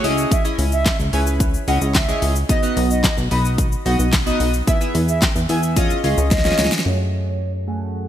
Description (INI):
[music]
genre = dance-pop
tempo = 110 BPM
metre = 4/4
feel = straight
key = F# dorian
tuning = A4 = 440 Hz
[part]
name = chorused retro synth keys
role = accompaniment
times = 0.0-8.1 s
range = A3 to F#5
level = -23 LUFS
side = equal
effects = low-pass filter
[part]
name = plucky analog bass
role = bass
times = 0.0-8.1 s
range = B1 to F#2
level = -20 LUFS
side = equal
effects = sidechain pumping
[part]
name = pop drum kit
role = drums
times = 0.0-6.9 s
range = handclaps, hi-hat, kick drum, shaker, snare drum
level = -20 LUFS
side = equal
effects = none
[part]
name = mellow silver concert flute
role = melody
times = 0.3-7.8 s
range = C#5 to B5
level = -26 LUFS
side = right 1 dB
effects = sidechain pumping, low-pass filter, ping-pong delay
[sound]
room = light reverb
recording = bright 1980s-style digital production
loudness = -16 LUFS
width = side -11 dB against mid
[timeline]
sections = 0.0-6.9 A section; 6.9-8.1 B section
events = drop 0.0-6.9; drum fill 6.3-6.9; filter sweep 6.9-8.1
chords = 0.0 C#madd9; 2.5 B; 4.7 E; 5.8 C#add9; 6.9 F#madd9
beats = | 0.31 0.86 1.40 1.95 | 2.49 3.04 3.58 4.13 | 4.67 5.22 5.77 6.31 | 6.86 7.40 7.95